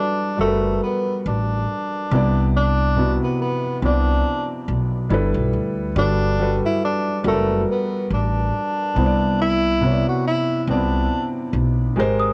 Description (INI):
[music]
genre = hip hop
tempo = 70 BPM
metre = 4/4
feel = swing 56% on 16ths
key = G major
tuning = A4 = 441 Hz
[part]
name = warm tenor saxophone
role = melody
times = 0.0-11.3 s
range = A3 to F#4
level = -25 LUFS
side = equal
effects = none
[part]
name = felt-muted upright piano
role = accompaniment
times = 0.0-12.3 s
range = C3 to D5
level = -25 LUFS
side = equal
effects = none
[part]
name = upright bass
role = bass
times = 0.4-12.3 s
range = F#1 to D2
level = -24 LUFS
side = equal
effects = none
[part]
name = celesta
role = second line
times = 12.2-12.3 s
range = Eb6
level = -23 LUFS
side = equal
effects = none
[sound]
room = moderate small room reverb, RT60 0.5 s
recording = cassette tape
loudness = -20 LUFS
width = mono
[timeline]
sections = 0.0-6.0 A section; 6.0-12.3 B section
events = none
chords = 0.0 Gmaj9; 2.1 Cmaj9; 5.1 G69; 6.0 Gmaj9; 9.0 Cmaj9